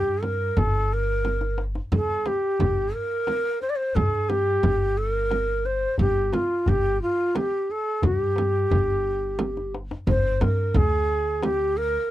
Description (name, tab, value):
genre	Persian modal ensemble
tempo	88 BPM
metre	3/4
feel	straight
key	G dastgah shur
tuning	A4 = 440 Hz
part	breathy reedy ney	melody	0.0-12.1 s	F4 to D5	-24 LUFS	equal	none
part	upright bass	bass	0.0-12.0 s	G1 to G2	-27 LUFS	equal	none
part	frame drum	percussion	0.2-11.6 s	none	-27 LUFS	right 2 dB	none
part	tombak	percussion	0.2-11.9 s	none	-28 LUFS	left 2 dB	none
room	light reverb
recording	dry, close 1970s-style studio recording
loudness	-21 LUFS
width	side -14 dB against mid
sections	0.0-10.1 A section; 10.1-12.1 B section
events	drum fill 1.2-1.9, 9.4-10.1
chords	none